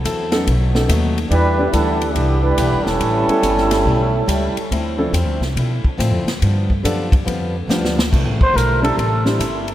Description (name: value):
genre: jazz, big band swing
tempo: 141 BPM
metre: 4/4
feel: swing 66% on 8ths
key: C major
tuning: A4 = 441 Hz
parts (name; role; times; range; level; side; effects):
- picked plugged-in swing-style acoustic guitar; accompaniment; 0.0-9.7 s; G2 to A4; -25 LUFS; left 2 dB; none
- upright bass; bass; 0.0-9.7 s; E1 to B2; -19 LUFS; equal; none
- swinging big-band drum kit; drums; 0.0-9.7 s; crash cymbal, hi-hat, kick drum, ride cymbal, snare drum; -22 LUFS; equal; none
- warm baby grand piano; accompaniment; 0.3-9.4 s; F3 to A4; -25 LUFS; equal; none
- bright trombone section; second line; 1.3-4.6 s; E3 to B4; -19 LUFS; right 2 dB; none
- growling trumpet; melody; 8.4-9.2 s; A4 to C5; -19 LUFS; right 1 dB; none
room: moderate cathedral reverb, RT60 5.3 s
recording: in a vast, echoing space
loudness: -15 LUFS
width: side -13 dB against mid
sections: 0.0-8.1 A section; 8.1-9.7 B section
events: trombone section solo 0.0-8.1; drum fill 7.7-8.1; trumpet solo 8.1-9.7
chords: 0.5 B7; 1.3 Em7; 3.0 A7; 4.7 Dm9; 6.4 G7; 8.1 C6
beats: 0.04 0.46 0.89 | 1.31 1.74 2.16 2.58 | 3.01 3.44 3.86 4.29 | 4.71 5.14 5.56 5.99 | 6.41 6.84 7.26 7.69 | 8.12 8.54 8.97 9.39